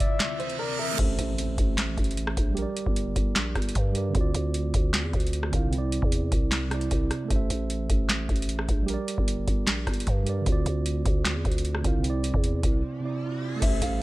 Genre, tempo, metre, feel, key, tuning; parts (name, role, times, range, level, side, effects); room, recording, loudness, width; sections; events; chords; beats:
hip hop, trap; 152 BPM; 4/4; half-time; A4 = 439 Hz
dark grand piano; melody; 0.0-1.0, 13.6-14.0 s; Bb4 to F5; -33 LUFS; left 2 dB; slapback echo
breathy flute-like synth lead; second line; 0.0-1.0 s; D5 to E5; -34 LUFS; left 7 dB; chorus, slapback echo
ethereal airy pad; sustained chords; 0.0-1.0, 13.6-14.0 s; D3 to C4; -40 LUFS; equal; ensemble chorus, built-in reverb, tremolo
booming analog drum machine; drums; 0.0-13.9 s; crash cymbal, handclaps, hi-hat, kick drum, rim click, snare drum; -26 LUFS; equal; vintage 12-bit sampler grit
reverse cymbal, impact and riser; sound effects; 0.4-2.6, 12.7-14.0 s; -36 LUFS; right 2 dB
mellow tine electric piano; accompaniment; 0.9-14.0 s; C3 to F5; -31 LUFS; right 3 dB; low-pass filter
growling 808-style bass; bass; 1.0-14.0 s; G1 to G2; -29 LUFS; equal
digital ambience; -24 LUFS; side -18 dB against mid
1.0-13.6 A section
reverse cymbal 0.4-1.0; impact 1.0-2.6, 13.6-14.0; riser 12.7-13.6; break 12.8-13.6
0.0 Cadd9; 1.0 Am; 2.6 Gm; 4.1 Dm7; 5.7 Cadd9; 7.3 Am; 8.9 Gm; 10.5 Dm7; 12.0 Cadd9
0.20 0.59 | 0.99 1.38 1.78 2.17 | 2.57 2.96 3.36 3.75 | 4.15 4.54 4.94 5.33 | 5.73 6.12 6.52 6.91 | 7.30 7.70 8.10 8.49 | 8.88 9.28 9.67 10.07 | 10.46 10.86 11.25 11.65 | 12.04 12.44 12.83 13.23 | 13.62 14.02